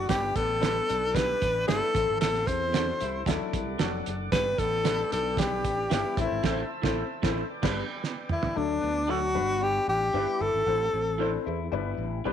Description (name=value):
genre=uptempo 1960s-style soul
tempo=114 BPM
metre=4/4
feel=straight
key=G major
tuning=A4 = 444 Hz
part: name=breathy tenor saxophone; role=melody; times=0.0-11.5 s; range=D4 to C5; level=-27 LUFS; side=left 1 dB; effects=none
part: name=tonewheel organ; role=sustained chords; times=0.0-8.5 s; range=A4 to E6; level=-40 LUFS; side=right 1 dB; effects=slow rotary speaker
part: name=mellow electric guitar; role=riff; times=0.0-12.3 s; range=B3 to G4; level=-39 LUFS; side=left 13 dB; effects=spring reverb
part: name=sustaining fretless electric bass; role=bass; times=0.0-12.3 s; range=F1 to E2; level=-34 LUFS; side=right 1 dB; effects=ensemble chorus
part: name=warm upright piano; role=accompaniment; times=0.1-12.3 s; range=E3 to C5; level=-35 LUFS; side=left 11 dB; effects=none
part: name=cloth-damped thuddy drum kit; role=drums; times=0.1-8.5 s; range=crash cymbal, hi-hat, kick drum, snare drum, toms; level=-30 LUFS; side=right 5 dB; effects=none
part: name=electric guitar through a small old amp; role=stabs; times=0.6-12.3 s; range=C4 to C5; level=-36 LUFS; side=right 10 dB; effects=none
room=light reverb, small room reverb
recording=1960s-style stereo with parts hard left and right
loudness=-25 LUFS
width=side -9 dB against mid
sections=0.0-8.6 A section; 8.6-12.3 B section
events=band accent 6.4-8.6; drum fill 8.0-8.6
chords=0.1 G; 1.9 Am; 3.3 D; 4.3 G; 6.2 Am; 7.5 G; 8.6 D; 9.3 G; 10.7 Am; 11.7 G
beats=| 0.10 0.62 1.15 1.68 | 2.21 2.74 3.27 3.79 | 4.32 4.85 5.38 5.91 | 6.44 6.97 7.50 8.02 | 8.55 9.08 9.61 10.14 | 10.67 11.20 11.72 12.25